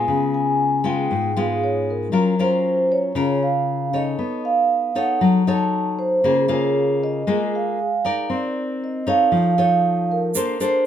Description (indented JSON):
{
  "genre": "bossa nova",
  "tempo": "116 BPM",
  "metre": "4/4",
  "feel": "straight",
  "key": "unclear",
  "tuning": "A4 = 440 Hz",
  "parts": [
    { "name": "vibraphone with soft mallets", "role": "melody", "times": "0.0-10.9 s", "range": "Bb4 to A5", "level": "-21 LUFS", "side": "right 3 dB", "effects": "none" },
    { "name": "nylon-string guitar", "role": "accompaniment", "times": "0.0-10.9 s", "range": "Ab2 to D5", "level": "-21 LUFS", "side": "left 3 dB", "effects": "none" },
    { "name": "egg shaker", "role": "percussion", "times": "10.3-10.9 s", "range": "none", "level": "-27 LUFS", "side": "right 8 dB", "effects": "none" }
  ],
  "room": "light reverb",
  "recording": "minimal, uncompressed stereo recording",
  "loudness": "-18 LUFS",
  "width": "side -9 dB against mid",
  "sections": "0.0-10.9 A section",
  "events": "none",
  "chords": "0.1 Db7; 2.1 Gbmaj7; 4.2 B9; 6.2 Db6; 8.3 Cm9; 9.3 Faug7; 10.4 Bbmaj9",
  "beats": "| 0.06 0.57 1.08 1.60 | 2.11 2.63 3.14 3.66 | 4.17 4.69 5.20 5.72 | 6.23 6.75 7.26 7.78 | 8.29 8.81 9.32 9.84 | 10.35"
}